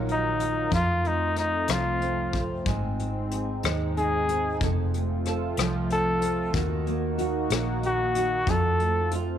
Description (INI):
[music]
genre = six-eight pop ballad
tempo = 62 BPM (dotted quarters)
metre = 6/8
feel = straight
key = unclear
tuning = A4 = 440 Hz
[part]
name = nylon-string guitar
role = accompaniment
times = 0.0-9.4 s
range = F2 to A4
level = -30 LUFS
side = right 1 dB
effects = double-tracked left and right
[part]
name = sweeping resonant pad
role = sustained chords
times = 0.0-9.4 s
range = Eb3 to Bb4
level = -34 LUFS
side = equal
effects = chorus
[part]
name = vintage muted fingered electric bass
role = bass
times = 0.0-9.4 s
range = F1 to F2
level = -30 LUFS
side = right 1 dB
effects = none
[part]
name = clear flugelhorn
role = melody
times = 0.1-9.1 s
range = Eb4 to A4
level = -26 LUFS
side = left 2 dB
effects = none
[part]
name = soft brush drum kit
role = drums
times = 0.1-9.3 s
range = hi-hat, kick drum, rim click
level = -31 LUFS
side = left 3 dB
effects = none
[sound]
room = light reverb, studio ambience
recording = 1960s-style stereo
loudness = -23 LUFS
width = side -10 dB against mid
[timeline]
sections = 0.0-9.4 A section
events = none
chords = 0.0 Ebmadd9; 0.7 F; 2.7 Ab; 4.6 F; 6.5 Ebm; 8.5 F